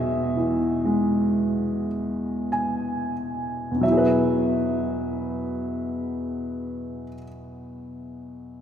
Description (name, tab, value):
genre	classical, lyrical solo piano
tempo	44-65 BPM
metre	4/4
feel	rubato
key	E major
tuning	A4 = 439 Hz
part	warm upright piano	solo	0.0-8.6 s	E2 to G#5	-23 LUFS	equal	none
room	wet cathedral reverb, RT60 5.3 s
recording	recorded in a church or concert hall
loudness	-22 LUFS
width	side -9 dB against mid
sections	0.0-3.8 A section; 3.8-8.6 B section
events	slowing down 0.0-3.8; upright piano fill 1.9-3.8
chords	0.0 E; 3.8 Eadd9